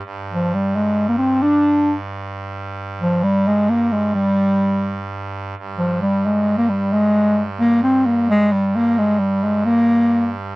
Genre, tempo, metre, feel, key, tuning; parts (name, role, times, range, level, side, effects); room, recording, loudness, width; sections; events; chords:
medieval dance; 87 BPM (dotted quarters); 6/8; straight; G phrygian; A4 = 440 Hz
pipe organ, trumpet; drone; 0.0-10.6 s; G2; -27 LUFS; right 2 dB; cassette tape
mellow bass clarinet; melody; 0.3-10.3 s; F3 to D4; -15 LUFS; equal; cassette tape
light reverb; home recording on cassette; -15 LUFS; side -23 dB against mid
0.0-5.5 A section; 5.5-10.6 A section